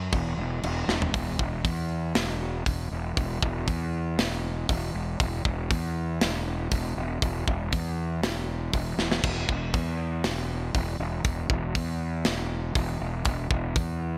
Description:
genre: heavy metal.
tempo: 119 BPM.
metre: 4/4.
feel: straight.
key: unclear.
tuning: A4 = 440 Hz.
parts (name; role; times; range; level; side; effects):
fuzz fingered electric bass; bass; 0.0-14.2 s; E1 to E2; -31 LUFS; equal; overdrive.
tight metal drum kit; drums; 0.1-13.9 s; crash cymbal, hi-hat, kick drum, snare drum, toms; -31 LUFS; equal; gated reverb.
room: little or no reverb.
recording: bright 1980s-style digital production.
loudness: -28 LUFS.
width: mono.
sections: 0.0-1.1 A section; 1.1-14.2 B section.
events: half time 0.0-1.1; drum fill 0.9, 9.0.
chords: none.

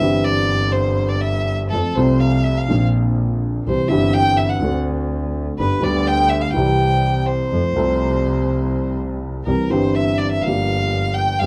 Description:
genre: tango.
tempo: 123 BPM.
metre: 4/4.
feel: rubato.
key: F major.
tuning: A4 = 439 Hz.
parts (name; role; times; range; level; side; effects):
rich violin; second line; 0.0-11.5 s; A4 to G5; -23 LUFS; equal; none.
dark baby grand piano; accompaniment; 0.0-11.5 s; G1 to A4; -22 LUFS; equal; none.
clear double bass; bass; 0.0-11.5 s; G1 to F2; -25 LUFS; equal; none.
room: wet club reverb, RT60 0.5 s.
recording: none.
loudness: -19 LUFS.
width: mono.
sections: 0.0-11.5 A section.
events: violin solo 0.0-11.5.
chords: 0.0 C; 1.7 F; 2.7 Bbadd9; 3.7 C; 4.6 D7; 5.6 G; 6.5 C; 7.5 F; 9.5 C; 10.4 Gm7.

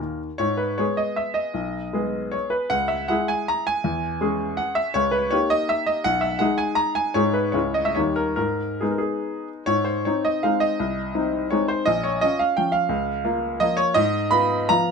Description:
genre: classical, romantic triple-time dance for piano with dotted rhythms.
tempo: 129-186 BPM.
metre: 3/4.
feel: rubato.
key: G# minor, Ab major from 9.7 s.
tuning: A4 = 440 Hz.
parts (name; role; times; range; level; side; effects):
clear baby grand piano; solo; 0.0-14.9 s; Bb1 to Cb6; -20 LUFS; equal; none.
room: light reverb.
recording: close, detailed microphones.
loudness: -20 LUFS.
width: side -5 dB against mid.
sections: 0.4-9.7 A section; 9.7-14.9 B section.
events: none.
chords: 0.4 G#m; 1.6 G#m/B; 2.7 C#m; 3.8 C#m/E; 4.9 D#7/C#; 6.0 G#m/B; 7.2 G#m; 7.5 C#m; 7.9 D#7; 8.4 G#m; 9.7 Ab; 10.8 Ab/C; 11.9 Bbm; 12.9 Bbm/Db; 14.0 Fm7b5/Ab.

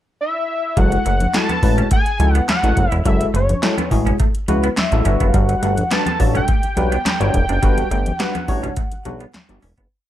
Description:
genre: early-eighties boogie funk.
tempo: 105 BPM.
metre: 4/4.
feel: straight.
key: F# phrygian.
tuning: A4 = 440 Hz.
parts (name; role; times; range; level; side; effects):
fat analog lead; melody; 0.2-9.3 s; C#5 to A5; -22 LUFS; equal; chorus, slapback echo.
tine electric piano; accompaniment; 0.8-9.7 s; G3 to D5; -22 LUFS; left 2 dB; analog chorus.
semi-hollow electric guitar; riff; 0.8-9.9 s; F#3 to E4; -28 LUFS; right 4 dB; wide subtle chorus.
chorused synth bass; bass; 0.8-9.9 s; E1 to C#2; -18 LUFS; equal; none.
electro analog drum machine; drums; 0.8-9.9 s; handclaps, hi-hat, kick drum, snare drum; -20 LUFS; equal; none.
congas; percussion; 0.9-9.8 s; none; -28 LUFS; left 2 dB; none.
room: light reverb.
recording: dark, warm production, lossy compression artefacts.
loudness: -15 LUFS.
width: side -12 dB against mid.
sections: 0.0-0.8 pickup bar; 0.8-9.9 verse.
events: fade-out 7.6-9.9.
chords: 0.0 N.C.; 0.8 F#m9; 5.1 Gmaj7.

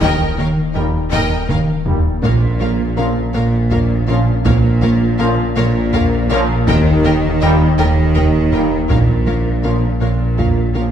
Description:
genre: cinematic, hybrid orchestral and electronic film score.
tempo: 54 BPM (dotted quarters).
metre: 6/8.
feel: straight.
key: Bb dorian.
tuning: A4 = 440 Hz.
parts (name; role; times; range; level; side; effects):
warm symphonic violin section; melody; 0.0-10.8 s; F5 to G5; -27 LUFS; left 3 dB; none.
clear studio violin section; second line; 0.0-10.8 s; Db5 to Eb5; -30 LUFS; left 5 dB; none.
bright symphonic viola section; accompaniment; 0.0-10.8 s; Bb4; -27 LUFS; equal; none.
thumb-piano-like synth pluck; arpeggios; 0.0-10.6 s; Eb3 to Bb4; -26 LUFS; left 3 dB; none.
smooth gliding synth bass; riff; 0.0-10.9 s; Eb2 to Bb3; -19 LUFS; right 1 dB; none.
clear symphonic cello section; bass; 0.0-10.9 s; Bb2 to Eb3; -21 LUFS; equal; none.
mellow tuba; bass; 0.0-10.9 s; Bb1 to Eb2; -21 LUFS; right 1 dB; none.
rich symphonic double bass section; bass; 0.0-10.9 s; Bb1 to Eb2; -21 LUFS; right 2 dB; none.
saturated sub bass; bass; 0.0-10.9 s; Eb1 to Bb1; -24 LUFS; left 1 dB; none.
taiko ensemble; drums; 0.0-10.7 s; none; -22 LUFS; equal; none.
dark French horn section; sustained chords; 0.7-10.9 s; Bb3 to Eb4; -26 LUFS; left 4 dB; none.
warm trombone section; sustained chords; 0.7-10.9 s; Bb2 to G3; -26 LUFS; right 1 dB; none.
room: wet scoring stage reverb, RT60 1.7 s.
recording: heard from further back in the room.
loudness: -13 LUFS.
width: side -9 dB against mid.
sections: 0.0-10.9 A section.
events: drum fill 1.1-2.2.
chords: 0.0 Eb; 2.2 Bb5; 6.7 Eb; 8.9 Bbm.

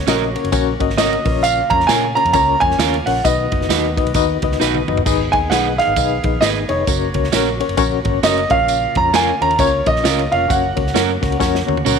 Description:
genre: uptempo 1960s-style soul.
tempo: 132 BPM.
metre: 4/4.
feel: swing 60% on 8ths.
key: F# major.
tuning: A4 = 439 Hz.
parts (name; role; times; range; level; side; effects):
warm concert grand piano; melody; 0.0-12.0 s; C#5 to A#5; -18 LUFS; right 2 dB; none.
reed electric piano; accompaniment; 0.0-12.0 s; G#2 to D#5; -21 LUFS; left 15 dB; fast tremolo.
bright tonewheel organ; sustained chords; 0.0-12.0 s; C#3 to G#4; -29 LUFS; equal; overdrive, slow rotary speaker.
vintage muted fingered electric bass; bass; 0.0-12.0 s; E#1 to A#2; -24 LUFS; equal; none.
electric guitar at the edge of break-up; stabs; 0.1-12.0 s; C#4 to B4; -24 LUFS; right 15 dB; spring reverb.
natural country drum kit; drums; 0.1-12.0 s; crash cymbal, hi-hat, kick drum, ride cymbal, snare drum, toms; -22 LUFS; right 3 dB; none.
tambourine; percussion; 0.1-12.0 s; none; -27 LUFS; right 16 dB; none.
room: light reverb.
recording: 1960s-style stereo with parts hard left and right.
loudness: -14 LUFS.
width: side -6 dB against mid.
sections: 0.0-12.0 A section.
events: drum fill 4.6-5.1, 11.4-12.0.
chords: 0.0 F#; 1.2 A#m; 3.2 B; 5.1 G#m; 6.9 F#; 8.5 A#m; 10.5 F#.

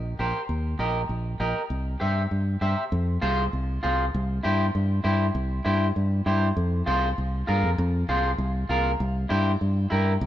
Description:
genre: latin, cumbia.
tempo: 198 BPM.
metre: 4/4.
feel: straight.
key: F harmonic minor.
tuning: A4 = 440 Hz.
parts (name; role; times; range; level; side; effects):
fingered electric bass; bass; 0.0-10.3 s; Bb1 to G2; -25 LUFS; equal; none.
electric guitar at the edge of break-up; accompaniment; 0.2-10.1 s; E4 to E5; -27 LUFS; equal; none.
room: light reverb.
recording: heard from further back in the room.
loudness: -23 LUFS.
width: side -12 dB against mid.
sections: 0.0-2.9 A section; 2.9-10.3 B section.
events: none.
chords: 0.0 Eb; 1.7 C; 2.9 Fm; 4.1 C; 6.6 Fm; 9.0 C7.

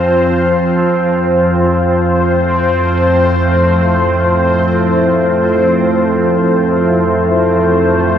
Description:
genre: dark ambient drone.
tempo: free time.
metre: none.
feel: none.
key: unclear.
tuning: A4 = 440 Hz.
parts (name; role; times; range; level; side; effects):
deep dark ambient pad; sustained chords; 0.0-8.2 s; A3 to Ab5; -14 LUFS; equal; chorus, built-in reverb.
organ-like drone; drone; 0.0-8.2 s; F2 to F3; -14 LUFS; equal; ensemble chorus, built-in reverb.
bubbling stepped-filter texture; texture; 0.0-8.2 s; C4 to C5; -19 LUFS; right 2 dB; chorus, built-in reverb.
room: wet huge ambient reverb, RT60 8.3 s.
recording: dreamy mix soaked in reverb.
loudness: -10 LUFS.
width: side -9 dB against mid.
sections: 0.0-8.2 A section.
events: none.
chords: 0.0 Fm; 1.8 Am.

